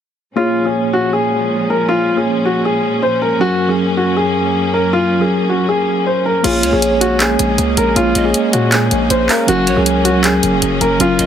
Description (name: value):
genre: hip hop, trap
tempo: 158 BPM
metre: 4/4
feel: half-time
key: Bb minor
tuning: A4 = 437 Hz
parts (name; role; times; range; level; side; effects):
- warm concert grand piano; melody; 0.4-11.3 s; F4 to C5; -16 LUFS; left 2 dB; none
- mellow tine electric piano; accompaniment; 0.4-11.3 s; Gb3 to Db5; -17 LUFS; right 1 dB; medium stereo tremolo
- rich symphonic string section; sustained chords; 0.4-11.3 s; Gb2 to Db4; -22 LUFS; equal; none
- hard-hitting 808-style bass; bass; 6.4-11.3 s; Gb1 to Bb2; -20 LUFS; equal; none
- trap drum kit; drums; 6.4-11.3 s; crash cymbal, handclaps, hi-hat; -18 LUFS; equal; none
- breathy mellow pan flute; second line; 6.6-11.3 s; Db5 to F5; -24 LUFS; right 5 dB; digital delay
room: light reverb, studio reverb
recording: heavily compressed radio sound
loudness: -12 LUFS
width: side -9 dB against mid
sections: 0.4-6.4 A section; 6.4-11.3 B section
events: none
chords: 0.4 Bbm7; 3.4 Gb; 6.4 Bbm7; 9.5 Gb